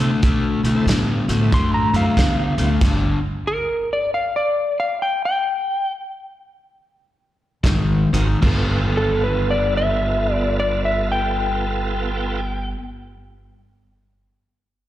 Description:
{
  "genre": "electric blues shuffle",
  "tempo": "74-93 BPM",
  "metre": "4/4",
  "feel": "swing 64% on 8ths",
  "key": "G mixolydian",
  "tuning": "A4 = 438 Hz",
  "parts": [
    { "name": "bright tonewheel organ", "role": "accompaniment", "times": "0.0-2.7, 8.1-12.4 s", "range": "B3 to Bb4", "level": "-27 LUFS", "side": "right 5 dB", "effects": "slow rotary speaker, overdrive, chorus vibrato, slapback echo" },
    { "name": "overdriven electric guitar", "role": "riff", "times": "0.0-3.2, 7.6-12.8 s", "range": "G2 to A4", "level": "-22 LUFS", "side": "left 3 dB", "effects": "none" },
    { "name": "upright bass", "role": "bass", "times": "0.0-3.1, 7.6-12.7 s", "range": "G1 to B2", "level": "-22 LUFS", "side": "right 1 dB", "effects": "none" },
    { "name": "warm soul drum kit", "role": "drums", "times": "0.0-3.0, 7.6-8.7 s", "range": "crash cymbal, hi-hat, kick drum, snare drum", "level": "-21 LUFS", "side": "right 1 dB", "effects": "none" },
    { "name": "electric slide guitar", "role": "melody", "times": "1.5-12.7 s", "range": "A4 to C6", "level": "-21 LUFS", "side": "left 1 dB", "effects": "slapback echo" }
  ],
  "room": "little or no reverb",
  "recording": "live gig heard through the venue's PA, recital hall reverb",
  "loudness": "-17 LUFS",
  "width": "side -13 dB against mid",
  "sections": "0.0-8.4 A section; 8.4-11.6 B section",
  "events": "slowing down 2.8-8.4; stop 2.8-7.6",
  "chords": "0.0 D9; 2.8 G5; 7.6 Ab9; 8.4 G9"
}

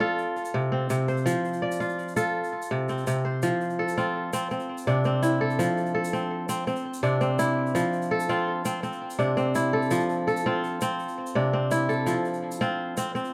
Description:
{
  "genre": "west african traditional, West African string and xylophone music",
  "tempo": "111 BPM (dotted quarters)",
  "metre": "12/8",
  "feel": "straight",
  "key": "F major",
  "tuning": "A4 = 438 Hz",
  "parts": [
    { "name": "kora", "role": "arpeggios", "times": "0.0-13.3 s", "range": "C3 to D5", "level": "-26 LUFS", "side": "equal", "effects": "tape echo" },
    { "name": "egg shaker", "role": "percussion", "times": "0.2-13.3 s", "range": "none", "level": "-45 LUFS", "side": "equal", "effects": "none" }
  ],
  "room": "moderate studio reverb, RT60 0.6 s",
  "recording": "dark, warm production",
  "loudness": "-27 LUFS",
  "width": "mono",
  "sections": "0.0-3.4 A section; 3.4-13.3 B section",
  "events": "none",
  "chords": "0.2 Am/C; 1.3 F; 2.3 Am/C; 3.4 F; 4.5 C; 5.6 F; 6.7 C; 7.8 F; 8.8 C; 9.9 F; 11.0 C; 12.1 F"
}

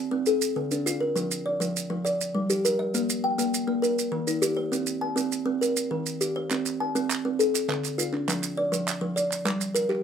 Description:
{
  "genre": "southern african traditional, mbira-style interlocking cycle",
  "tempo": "135 BPM (dotted quarters)",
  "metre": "12/8",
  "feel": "straight",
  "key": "unclear",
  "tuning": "A4 = 441 Hz",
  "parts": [
    { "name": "kalimba", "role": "arpeggios", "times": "0.0-10.0 s", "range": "D3-29c to A5-43c", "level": "-25 LUFS", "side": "equal", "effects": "none" },
    { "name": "maracas", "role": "percussion", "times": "0.3-9.9 s", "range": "none", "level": "-31 LUFS", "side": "right 6 dB", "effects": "none" },
    { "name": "group handclap", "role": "percussion", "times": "6.5-10.0 s", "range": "none", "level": "-32 LUFS", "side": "right 4 dB", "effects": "none" }
  ],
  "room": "moderate small room ambience, RT60 0.5 s",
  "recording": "none",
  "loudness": "-24 LUFS",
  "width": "side -8 dB against mid",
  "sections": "0.0-6.5 A section; 6.5-10.0 B section",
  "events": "none",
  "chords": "0.3 Dm; 1.2 Bb/F; 2.1 Gm; 2.9 Eb/Bb; 3.8 Eb; 4.7 Am/C; 5.6 Eb; 6.5 Am/C; 7.4 Dm; 8.3 Dm/F; 9.2 Gm"
}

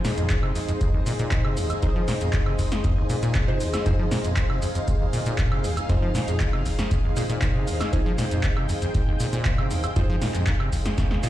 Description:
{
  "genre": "acid house",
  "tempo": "118 BPM",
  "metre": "4/4",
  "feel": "straight",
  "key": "F minor",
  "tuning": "A4 = 441 Hz",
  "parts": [
    { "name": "string machine, full ensemble", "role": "sustained chords", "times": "0.0-11.3 s", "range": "Eb4 to G5", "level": "-31 LUFS", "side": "equal", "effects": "ensemble chorus, sidechain pumping" },
    { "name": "deep acid bass", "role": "riff", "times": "0.0-11.3 s", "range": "Eb2 to F3", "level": "-26 LUFS", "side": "equal", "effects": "digital delay" },
    { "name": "electro analog drum machine", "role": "drums", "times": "0.0-11.3 s", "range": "handclaps, hi-hat, shaker, snare drum, woodblock", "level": "-31 LUFS", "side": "equal", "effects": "none" },
    { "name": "ethereal airy pad", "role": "texture", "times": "0.0-11.3 s", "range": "Eb4 to F5", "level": "-34 LUFS", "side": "equal", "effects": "ensemble chorus, built-in reverb, sidechain pumping" },
    { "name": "electronic kick drum", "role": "drums", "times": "0.3-11.1 s", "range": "none", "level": "-24 LUFS", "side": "equal", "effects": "none" },
    { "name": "filtered dub chord stab", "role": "stabs", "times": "1.8-11.3 s", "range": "Eb4 to C5", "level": "-36 LUFS", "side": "right 2 dB", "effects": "none" }
  ],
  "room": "light reverb, digital ambience",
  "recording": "played on a big sound system in a bare room, large studio reverb",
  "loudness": "-21 LUFS",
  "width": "side -14 dB against mid",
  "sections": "0.0-11.3 A section",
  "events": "drum fill 11.0-11.3",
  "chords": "0.0 Fm7"
}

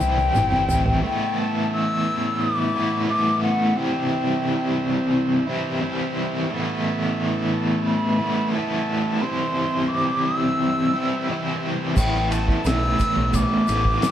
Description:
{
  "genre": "psychedelic rock",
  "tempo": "88 BPM",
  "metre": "4/4",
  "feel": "straight",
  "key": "A minor",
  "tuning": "A4 = 436 Hz",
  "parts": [
    { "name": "mellow hollow silver concert flute", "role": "melody", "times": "0.0-14.1 s", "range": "F#5 to E6", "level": "-25 LUFS", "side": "left 2 dB", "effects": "none" },
    { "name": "overdriven combo organ", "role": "sustained chords", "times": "0.0-14.1 s", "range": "B3 to E5", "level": "-33 LUFS", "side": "right 5 dB", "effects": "none" },
    { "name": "overdriven electric guitar", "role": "riff", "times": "0.0-14.1 s", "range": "A2 to E4", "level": "-22 LUFS", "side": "equal", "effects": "tremolo" },
    { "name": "growling fingered electric bass", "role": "bass", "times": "0.0-1.0, 12.0-14.0 s", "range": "G1 to C2", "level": "-25 LUFS", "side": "equal", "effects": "overdrive" },
    { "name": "cloth-damped thuddy drum kit", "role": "drums", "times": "0.0-1.0, 12.0-14.1 s", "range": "crash cymbal, kick drum, ride cymbal, snare drum, toms", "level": "-24 LUFS", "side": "equal", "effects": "none" },
    { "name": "tube shaker", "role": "percussion", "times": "0.0-0.9, 12.0-14.1 s", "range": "none", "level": "-38 LUFS", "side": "left 8 dB", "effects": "none" }
  ],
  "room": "moderate large studio reverb, RT60 0.8 s",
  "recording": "band playing live in one room",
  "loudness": "-20 LUFS",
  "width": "side -10 dB against mid",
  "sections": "0.0-1.0 A section; 1.0-14.1 B section",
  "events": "drum fill 0.0-1.0; flute solo 0.0-1.0",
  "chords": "0.0 C; 1.0 Asus2; 3.8 C; 6.5 Asus2; 9.2 C; 12.0 Asus2"
}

